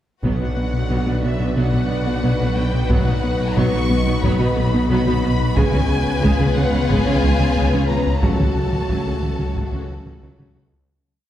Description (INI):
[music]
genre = cinematic, hybrid orchestral and electronic film score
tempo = 90 BPM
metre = 4/4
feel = straight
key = unclear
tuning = A4 = 441 Hz
[part]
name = warm symphonic violin section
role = melody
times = 0.2-10.2 s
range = E5 to C#6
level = -28 LUFS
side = left 2 dB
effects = none
[part]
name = warm symphonic violin section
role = second line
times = 0.2-10.7 s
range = E#4 to B4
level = -27 LUFS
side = left 3 dB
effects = none
[part]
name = rich symphonic viola section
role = accompaniment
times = 0.2-10.6 s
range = F#3 to D#4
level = -27 LUFS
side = right 2 dB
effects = none
[part]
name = hollow soft pad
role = sustained chords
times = 0.2-10.9 s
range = F#3 to D#5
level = -28 LUFS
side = equal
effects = chorus
[part]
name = warm French horn section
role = sustained chords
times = 0.2-10.5 s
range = A3 to G#4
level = -28 LUFS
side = left 2 dB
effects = none
[part]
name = rubbery square bass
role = riff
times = 0.2-10.8 s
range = C#2 to B3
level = -24 LUFS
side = left 1 dB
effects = none
[part]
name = detuned saw bass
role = bass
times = 0.2-10.9 s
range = B1 to C#2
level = -25 LUFS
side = equal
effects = none
[part]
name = rich symphonic cello section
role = bass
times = 0.2-10.6 s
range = B2 to C#3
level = -26 LUFS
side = right 2 dB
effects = none
[part]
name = warm symphonic double bass section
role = bass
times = 0.2-10.6 s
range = B1 to C#2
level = -26 LUFS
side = right 1 dB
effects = none
[part]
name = solo taiko drums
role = drums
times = 0.2-10.7 s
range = none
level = -24 LUFS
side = equal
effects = none
[sound]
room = wet scoring stage reverb, RT60 1.8 s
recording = heard from further back in the room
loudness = -16 LUFS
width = side -12 dB against mid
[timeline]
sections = 0.2-10.9 theme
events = fade-out 8.2-10.9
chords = 0.2 Bm; 2.9 B; 5.6 C#7; 8.2 F#m/C#